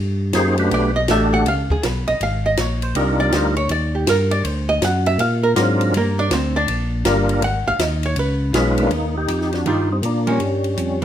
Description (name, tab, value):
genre	soul jazz organ trio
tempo	161 BPM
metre	4/4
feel	swing 65% on 8ths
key	unclear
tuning	A4 = 440 Hz
part	tonewheel organ	bass	0.0-11.0 s	G1 to A#2	-21 LUFS	equal	overdrive, slow rotary speaker
part	percussive tonewheel organ	melody	0.3-11.0 s	F#3 to C5	-20 LUFS	equal	slow rotary speaker, overdrive, chorus vibrato
part	compact cocktail drum kit	drums	0.3-11.0 s	hi-hat, kick drum, ride cymbal, snare drum	-26 LUFS	equal	none
part	archtop guitar, miked and amplified	accompaniment	0.7-11.0 s	Eb3 to F#5	-21 LUFS	right 2 dB	none
room	moderate large studio reverb, RT60 0.9 s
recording	minimal, uncompressed stereo recording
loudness	-16 LUFS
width	side -10 dB against mid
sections	0.0-8.9 A section; 8.9-11.0 B section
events	hollow-body jazz guitar solo 0.0-8.9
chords	0.0 Gmaj9; 1.5 Db5; 3.0 Cm11; 4.5 D7alt; 5.9 Gm7; 7.4 Ab5; 8.2 Db9; 8.9 Ebmaj9; 10.4 G7(b5, no3)